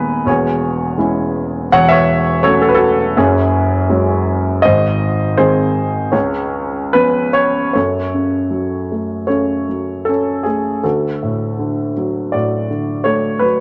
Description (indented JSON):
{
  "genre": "classical, lyrical solo piano",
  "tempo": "72-84 BPM",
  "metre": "4/4",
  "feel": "rubato",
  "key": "C# minor, F# minor from 7.8 s",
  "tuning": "A4 = 440 Hz",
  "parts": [
    { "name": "dark concert grand piano", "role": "solo", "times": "0.0-13.6 s", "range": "D#1 to F#5", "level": "-16 LUFS", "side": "equal", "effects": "none" }
  ],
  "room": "moderate spring reverb, RT60 2.0 s",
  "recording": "none",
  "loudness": "-16 LUFS",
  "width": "mono",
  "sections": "0.0-7.8 A section; 7.8-13.6 B section",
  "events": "none",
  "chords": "0.3 E6; 1.7 A6/E; 3.2 F#sus2; 4.6 G#; 6.1 C#7; 7.8 F#m; 10.8 D",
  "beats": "0.27 1.00 | 1.72 2.44 3.18 3.91 | 4.65 5.39 6.15 6.95 | 7.76 8.52 9.30 10.07 | 10.84 11.59 12.33 13.07"
}